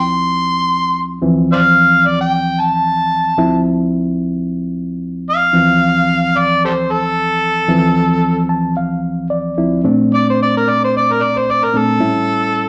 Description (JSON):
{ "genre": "blues", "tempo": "111 BPM", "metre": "4/4", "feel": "swing 55% on 16ths", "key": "D minor", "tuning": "A4 = 438 Hz", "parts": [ { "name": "overdriven harmonica", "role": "melody", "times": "0.0-12.7 s", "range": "G4 to C6", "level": "-16 LUFS", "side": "equal", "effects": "slapback echo" }, { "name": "reed electric piano", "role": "accompaniment", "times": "0.0-12.7 s", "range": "D2 to A5", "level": "-18 LUFS", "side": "equal", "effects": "none" } ], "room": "moderate club reverb, RT60 0.8 s", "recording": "live gig heard through the venue's PA, club reverb", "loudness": "-15 LUFS", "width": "mono", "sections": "0.0-1.2 A section; 1.2-12.7 B section", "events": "harmonica solo 0.0-1.2; reed electric piano fill 8.2-9.8", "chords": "0.0 Dm7; 9.8 Bbmaj7; 12.0 A7", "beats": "0.14 0.68 | 1.22 1.76 2.30 2.84 | 3.38 3.92 4.46 4.99 | 5.53 6.07 6.61 7.15 | 7.69 8.23 8.77 9.30 | 9.84 10.38 10.92 11.46 | 12.00 12.54" }